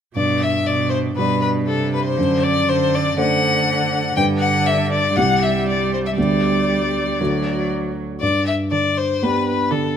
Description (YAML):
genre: quick classical-period movement for piano trio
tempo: 120 BPM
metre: 4/4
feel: straight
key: G major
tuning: A4 = 440 Hz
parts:
  - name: rich cello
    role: second line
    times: 0.1-10.0 s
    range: B2 to G3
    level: -23 LUFS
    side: right 6 dB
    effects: none
  - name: rich violin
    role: melody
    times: 0.2-10.0 s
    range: A4 to G5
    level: -20 LUFS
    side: left 5 dB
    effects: none
  - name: dark baby grand piano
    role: accompaniment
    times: 0.2-10.0 s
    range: C2 to C5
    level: -20 LUFS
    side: right 1 dB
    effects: none
room: light reverb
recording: close, detailed microphones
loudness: -16 LUFS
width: side -8 dB against mid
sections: 0.2-10.0 A section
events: none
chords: 0.2 G; 2.2 D7/F#; 4.2 G; 5.2 C5; 6.2 G/D; 7.2 D; 8.2 G